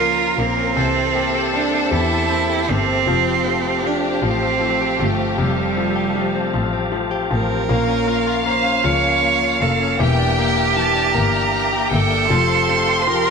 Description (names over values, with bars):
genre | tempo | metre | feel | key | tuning
six-eight pop ballad | 52 BPM (dotted quarters) | 6/8 | straight | F major | A4 = 441 Hz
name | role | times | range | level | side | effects
clear cello | melody | 0.0-13.3 s | G3 to Db5 | -20 LUFS | right 10 dB | none
clear studio violin section | second line | 0.0-13.3 s | G4 to C6 | -24 LUFS | left 2 dB | none
bright grand piano | accompaniment | 0.0-13.3 s | C3 to G4 | -26 LUFS | left 5 dB | none
tonewheel organ | sustained chords | 0.0-13.3 s | F3 to D6 | -26 LUFS | left 1 dB | chorus vibrato, stopped rotary speaker
direct-recorded clean electric guitar | arpeggios | 0.0-13.3 s | E3 to G4 | -26 LUFS | left 15 dB | none
rich double bass | bass | 0.0-13.3 s | E1 to E2 | -23 LUFS | left 1 dB | tube saturation
room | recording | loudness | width
light reverb | 1960s-style stereo with parts hard left and right | -16 LUFS | side -5 dB against mid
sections
0.0-7.7 A section; 7.7-13.3 A section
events
none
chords
0.0 Bbm; 0.8 C7; 3.1 Fadd9; 7.7 Bbm; 10.0 Em7b5; 12.3 Fadd9